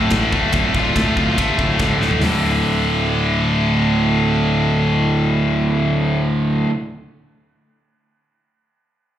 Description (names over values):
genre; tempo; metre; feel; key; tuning
heavy metal; 143 BPM; 4/4; straight; D minor; A4 = 441 Hz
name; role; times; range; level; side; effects
tight distorted guitar; riff; 0.0-6.7 s; D2 to F4; -17 LUFS; equal; distortion
fuzz picked electric bass; bass; 0.0-6.6 s; D1 to A1; -21 LUFS; equal; overdrive
tight metal drum kit; drums; 0.1-2.3 s; hi-hat, kick drum, ride cymbal, snare drum, toms; -22 LUFS; equal; none
room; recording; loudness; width
small room reverb; live gig heard through the venue's PA, club reverb; -15 LUFS; side -11 dB against mid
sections
0.0-2.2 A section; 2.2-5.6 B section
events
drum fill 2.0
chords
0.0 Dm; 2.2 D5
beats
0.12 | 0.54 0.96 1.37 1.79 | 2.21 2.63 3.05 3.47 | 3.89 4.31 4.73 5.15